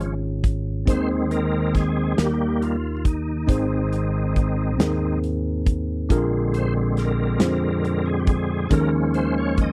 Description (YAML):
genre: slow gospel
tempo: 46 BPM (dotted quarters)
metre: 6/8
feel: straight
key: Ab major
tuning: A4 = 438 Hz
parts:
  - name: mellow tine electric piano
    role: accompaniment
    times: 0.0-9.7 s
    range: Ab2 to Db5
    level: -28 LUFS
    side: equal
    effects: none
  - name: bright tonewheel organ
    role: sustained chords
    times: 0.0-9.7 s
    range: D3 to Eb5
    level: -28 LUFS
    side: equal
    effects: slow rotary speaker, chorus vibrato
  - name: fingered electric bass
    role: bass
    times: 0.0-9.7 s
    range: Ab1 to F2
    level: -27 LUFS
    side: equal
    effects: none
  - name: natural country drum kit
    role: drums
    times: 0.0-9.7 s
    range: hi-hat, kick drum, snare drum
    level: -23 LUFS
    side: equal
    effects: none
room: little or no reverb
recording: dry, close 1970s-style studio recording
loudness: -22 LUFS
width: mono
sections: 0.0-9.7 A section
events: tonewheel organ solo 0.0-9.7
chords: 0.0 Db/Ab; 0.9 Ab/Eb; 2.2 Eb; 3.5 Ab; 6.1 Bb7; 8.7 Eb7sus4